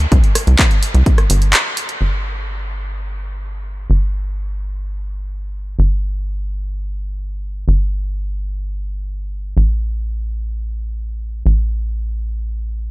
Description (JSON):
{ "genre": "melodic techno", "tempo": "127 BPM", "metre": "4/4", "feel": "straight", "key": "unclear", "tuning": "A4 = 440 Hz", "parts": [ { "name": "tight sequencer bass", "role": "bass", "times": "0.0-12.9 s", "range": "G1 to C2", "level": "-18 LUFS", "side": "equal", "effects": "sidechain pumping" }, { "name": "punchy analog drum machine", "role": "drums", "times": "0.0-2.0 s", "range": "handclaps, hi-hat, rim click", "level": "-19 LUFS", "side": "equal", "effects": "sidechain pumping on hats" }, { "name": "electronic kick drum", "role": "drums", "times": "0.1-1.2 s", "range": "none", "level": "-13 LUFS", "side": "equal", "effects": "none" } ], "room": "little or no reverb", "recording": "none", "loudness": "-17 LUFS", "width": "side -20 dB against mid", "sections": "0.0-2.0 A section; 2.0-12.9 B section", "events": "break 1.5-2.0", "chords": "none" }